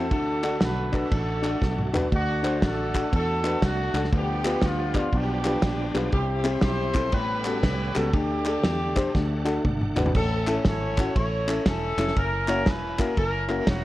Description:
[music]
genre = uptempo gospel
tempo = 119 BPM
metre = 4/4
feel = swing 64% on 8ths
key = A major from 10.2 s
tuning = A4 = 445 Hz
[part]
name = warm horn section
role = melody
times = 0.0-13.8 s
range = A3 to C#5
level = -28 LUFS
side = equal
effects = none
[part]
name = warm grand piano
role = accompaniment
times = 0.0-13.6 s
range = A2 to D5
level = -28 LUFS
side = left 2 dB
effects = none
[part]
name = bright tonewheel organ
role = sustained chords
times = 0.0-10.1 s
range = F3 to F#5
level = -35 LUFS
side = right 3 dB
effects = slow rotary speaker, chorus vibrato
[part]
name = fingered electric bass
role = bass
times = 0.0-13.8 s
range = E1 to E2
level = -29 LUFS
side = equal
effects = none
[part]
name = warm soul drum kit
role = drums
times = 0.1-13.8 s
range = crash cymbal, kick drum, ride cymbal, snare drum, toms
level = -27 LUFS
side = equal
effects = none
[part]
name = group handclap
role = percussion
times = 0.4-13.6 s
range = none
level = -37 LUFS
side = left 3 dB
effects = none
[sound]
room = light reverb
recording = worn, warbling old tape, cassette tape, warbly pitch drift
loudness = -22 LUFS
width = side -16 dB against mid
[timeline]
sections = 0.0-10.2 A section; 10.2-13.8 A section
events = drum fill 1.6-2.1, 9.1-10.2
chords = 0.1 D; 4.1 G7/D; 5.1 G7/B; 6.1 C; 7.1 A13; 8.1 Dsus4; 9.1 D; 10.2 A; 12.2 F#7

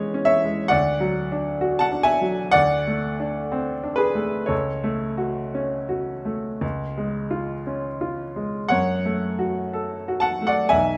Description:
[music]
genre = classical, romantic nocturne for solo piano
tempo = 56-69 BPM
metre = 4/4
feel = rubato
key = F# minor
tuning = A4 = 440 Hz
[part]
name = clear baby grand piano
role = solo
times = 0.0-11.0 s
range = B1 to A5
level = -24 LUFS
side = equal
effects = none
[sound]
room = moderate large studio reverb, RT60 1.3 s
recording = none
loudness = -24 LUFS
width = mono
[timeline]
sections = 0.0-11.0 A section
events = none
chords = 0.0 C#m/E; 0.7 Dadd9; 2.6 D7; 4.5 F#m/C#; 6.6 C#; 8.7 F#m

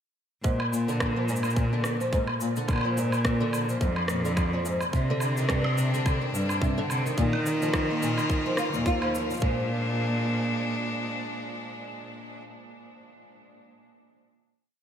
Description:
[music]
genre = folktronica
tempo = 107 BPM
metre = 4/4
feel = swing 56% on 16ths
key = Bb mixolydian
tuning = A4 = 440 Hz
[part]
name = fingerpicked acoustic archtop guitar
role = arpeggios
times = 0.4-9.7 s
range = G2 to F4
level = -30 LUFS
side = equal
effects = ensemble chorus, tape echo
[part]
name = clear cello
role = bass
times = 0.4-11.1 s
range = Eb2 to Eb3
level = -28 LUFS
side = equal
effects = none
[part]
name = electronic kick drum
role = drums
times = 0.4-9.5 s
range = none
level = -28 LUFS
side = equal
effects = overdrive
[part]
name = electronic shaker, woodblock and rim click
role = drums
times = 0.5-9.4 s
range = none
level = -33 LUFS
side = equal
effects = overdrive
[part]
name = bright string quartet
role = sustained chords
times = 4.9-12.4 s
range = Bb2 to F4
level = -34 LUFS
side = left 1 dB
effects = none
[sound]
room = moderate huge ambient reverb, RT60 8.4 s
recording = dreamy mix soaked in reverb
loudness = -24 LUFS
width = side -9 dB against mid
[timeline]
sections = 0.4-9.4 groove; 9.4-11.7 final chord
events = none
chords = 0.4 Bb7; 4.9 Cmadd9; 7.2 Ebsus2; 9.4 Bb7

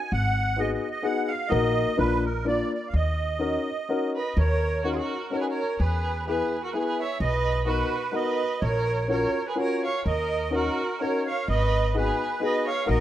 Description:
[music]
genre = musette waltz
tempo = 127 BPM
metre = 3/4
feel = swing 55% on 8ths, rubato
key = Eb minor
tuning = A4 = 438 Hz
[part]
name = musette accordion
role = melody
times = 0.0-13.0 s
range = Ab4 to Ab5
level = -29 LUFS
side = right 4 dB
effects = none
[part]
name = upright bass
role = bass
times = 0.1-13.0 s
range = Ab1 to E2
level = -26 LUFS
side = equal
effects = none
[part]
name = warm upright piano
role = accompaniment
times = 0.6-13.0 s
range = Bb3 to B4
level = -28 LUFS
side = left 4 dB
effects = none
[part]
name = rich violin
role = second line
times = 4.2-13.0 s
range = F4 to Db5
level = -29 LUFS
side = right 2 dB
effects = none
[sound]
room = light reverb, small room ambience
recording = rough home demo mix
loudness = -23 LUFS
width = side -12 dB against mid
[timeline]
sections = 0.0-4.4 A section; 4.4-13.0 A section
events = none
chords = 0.1 Abm7; 1.5 Ebm/Bb; 2.0 Bb; 2.9 Ebm7; 5.8 E; 7.2 Bmaj7; 8.6 Gbmaj7/Bb; 10.0 Ebm7; 11.5 Abm7

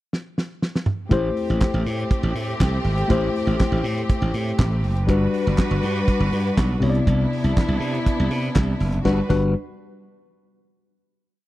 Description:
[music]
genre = disco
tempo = 121 BPM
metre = 4/4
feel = straight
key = G major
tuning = A4 = 441 Hz
[part]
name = warm soul drum kit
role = drums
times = 0.1-9.4 s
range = crash cymbal, handclaps, hi-hat, kick drum, snare drum, toms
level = -20 LUFS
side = right 1 dB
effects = none
[part]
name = tine electric piano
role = accompaniment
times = 1.1-9.5 s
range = C3 to D5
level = -24 LUFS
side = left 3 dB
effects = none
[part]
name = rich studio string section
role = sustained chords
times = 1.1-9.3 s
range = C3 to B4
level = -27 LUFS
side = right 1 dB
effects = none
[part]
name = glassy slap bass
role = bass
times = 1.1-9.5 s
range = F#1 to C3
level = -22 LUFS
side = right 1 dB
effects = none
[sound]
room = studio reverb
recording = dry, close 1970s-style studio recording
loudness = -19 LUFS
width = side -16 dB against mid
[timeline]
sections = 0.0-1.1 pickup bar; 1.1-9.1 verse; 9.1-11.0 final chord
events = drum fill 0.1-1.1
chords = 0.0 N.C.; 1.1 Am7; 5.1 Gmaj7; 6.8 Cmaj9; 9.1 Gmaj7

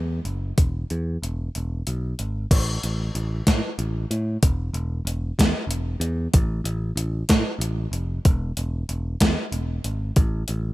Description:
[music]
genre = indie rock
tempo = 63 BPM (dotted quarters)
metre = 6/8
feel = straight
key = unclear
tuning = A4 = 439 Hz
[part]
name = picked electric bass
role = bass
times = 0.0-10.7 s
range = E1 to A2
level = -25 LUFS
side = equal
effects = none
[part]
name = gated 80s digital drum machine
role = drums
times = 0.3-10.6 s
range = crash cymbal, hi-hat, kick drum, snare drum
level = -21 LUFS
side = equal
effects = gated reverb, gated reverb snare, overdrive
[sound]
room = little or no reverb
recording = rough home demo mix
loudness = -22 LUFS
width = side -18 dB against mid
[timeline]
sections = 0.0-2.5 A section; 2.5-10.7 B section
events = break 1.5-2.5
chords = none

